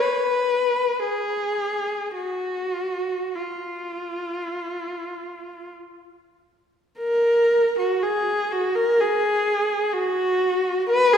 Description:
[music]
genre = classical, free, expressive piece for unaccompanied viola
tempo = 38-65 BPM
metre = 4/4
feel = rubato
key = unclear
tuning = A4 = 439 Hz
[part]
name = rich viola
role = solo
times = 0.0-11.2 s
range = F4 to Cb5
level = -21 LUFS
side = equal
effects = none
[sound]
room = wet scoring stage reverb, RT60 1.8 s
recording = heard from further back in the room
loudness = -21 LUFS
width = side -8 dB against mid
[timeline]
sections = 0.0-7.0 A section; 7.0-11.2 B section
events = none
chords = none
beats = 0.99 | 2.16 3.37 4.56 5.70 | 7.00 8.04 9.01 9.95 | 10.90

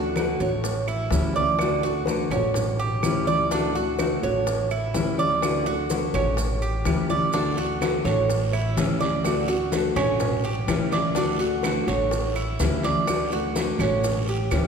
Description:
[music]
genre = latin, Cuban son and guajira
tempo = 125 BPM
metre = 4/4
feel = straight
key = D major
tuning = A4 = 440 Hz
[part]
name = nylon-string guitar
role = accompaniment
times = 0.0-14.7 s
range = D3 to F#4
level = -27 LUFS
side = left 3 dB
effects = none
[part]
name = Cuban tres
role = arpeggios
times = 0.0-14.7 s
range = C#4 to D5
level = -26 LUFS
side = right 5 dB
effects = none
[part]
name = upright bass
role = bass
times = 0.0-14.7 s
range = A1 to D2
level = -28 LUFS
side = equal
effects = none
[part]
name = bongos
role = percussion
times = 0.2-14.7 s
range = none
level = -33 LUFS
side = left 5 dB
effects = none
[part]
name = claves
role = percussion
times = 0.2-14.7 s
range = none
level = -39 LUFS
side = right 6 dB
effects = none
[part]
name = congas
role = percussion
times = 0.2-14.7 s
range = none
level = -31 LUFS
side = left 2 dB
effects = none
[part]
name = maracas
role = percussion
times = 0.2-14.7 s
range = none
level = -39 LUFS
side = right 3 dB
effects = none
[part]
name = guiro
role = percussion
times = 7.3-14.7 s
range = none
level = -38 LUFS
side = right 4 dB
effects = none
[sound]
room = wet concert hall reverb, RT60 2.2 s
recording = recorded in a church or concert hall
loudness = -21 LUFS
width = side -6 dB against mid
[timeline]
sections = 0.0-14.7 A section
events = none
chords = 0.0 D; 0.6 A7; 1.6 D; 2.6 A7; 3.5 D; 4.5 A7; 5.4 D; 6.4 A7; 7.3 D; 8.3 A7; 9.3 D; 10.2 A7; 11.2 D; 12.1 A7; 13.1 D; 14.0 A7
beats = 0.17 0.64 1.12 | 1.60 2.08 2.56 3.04 | 3.51 3.99 4.47 4.95 | 5.43 5.91 6.38 6.86 | 7.34 7.82 8.30 8.78 | 9.26 9.73 10.21 10.69 | 11.17 11.65 12.12 12.60 | 13.08 13.56 14.04 14.52

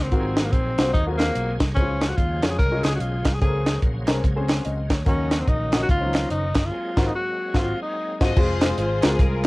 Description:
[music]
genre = uptempo gospel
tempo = 146 BPM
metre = 4/4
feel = swing 62% on 8ths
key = unclear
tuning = A4 = 440 Hz
[part]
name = breathy tenor saxophone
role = melody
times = 0.0-8.2 s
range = Bb3 to Bb4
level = -26 LUFS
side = left 1 dB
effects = cassette tape
[part]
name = bright tonewheel organ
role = sustained chords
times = 0.0-8.3 s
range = Db3 to F5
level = -35 LUFS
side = right 1 dB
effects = slow rotary speaker, overdrive, chorus vibrato, cassette tape
[part]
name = picked electric bass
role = bass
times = 0.0-9.5 s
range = F1 to F2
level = -26 LUFS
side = equal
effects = transformer saturation
[part]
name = clear upright piano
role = accompaniment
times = 0.1-9.5 s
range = Ab2 to Eb5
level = -28 LUFS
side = left 2 dB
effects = cassette tape
[part]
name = tight funk drum kit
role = drums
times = 0.1-9.5 s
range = crash cymbal, hi-hat, kick drum, snare drum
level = -21 LUFS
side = equal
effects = cassette tape
[part]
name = group handclap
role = percussion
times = 2.0-9.5 s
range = none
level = -37 LUFS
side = right 6 dB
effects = none
[part]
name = rich studio string section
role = melody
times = 8.2-9.5 s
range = F4 to Eb5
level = -26 LUFS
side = left 3 dB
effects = cassette tape
[sound]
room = light reverb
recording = home recording on cassette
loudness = -20 LUFS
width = side -22 dB against mid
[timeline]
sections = 0.0-8.4 A section; 8.4-9.5 B section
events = band accent 6.7-8.4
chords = 0.1 Ab13; 1.8 Dbmaj7; 3.4 Bbm9; 5.1 Ebm7; 6.7 Ab13; 8.4 Fm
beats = | 0.12 0.53 0.94 1.35 | 1.77 2.18 2.59 3.00 | 3.41 3.83 4.24 4.65 | 5.07 5.48 5.89 6.30 | 6.72 7.13 7.54 7.95 | 8.37 8.78 9.19

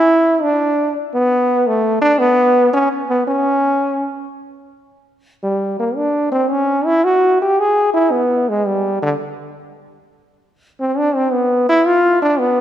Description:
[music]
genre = jazz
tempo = 112 BPM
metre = 4/4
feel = swing 68% on 8ths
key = unclear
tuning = A4 = 440 Hz
[part]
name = bright trombone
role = solo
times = 0.0-12.6 s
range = D3 to G#4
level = -14 LUFS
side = equal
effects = none
[sound]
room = wet scoring stage reverb, RT60 2.0 s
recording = recorded in a church or concert hall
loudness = -14 LUFS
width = side -11 dB against mid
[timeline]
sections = 0.0-4.3 A section; 4.3-12.6 B section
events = trombone solo 4.3-12.6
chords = none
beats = | 0.03 0.57 1.11 1.65 | 2.19 2.72 3.26 3.80 | 4.34 4.88 5.41 5.95 | 6.49 7.03 7.57 8.10 | 8.64 9.18 9.71 10.25 | 10.78 11.32 11.85 12.39

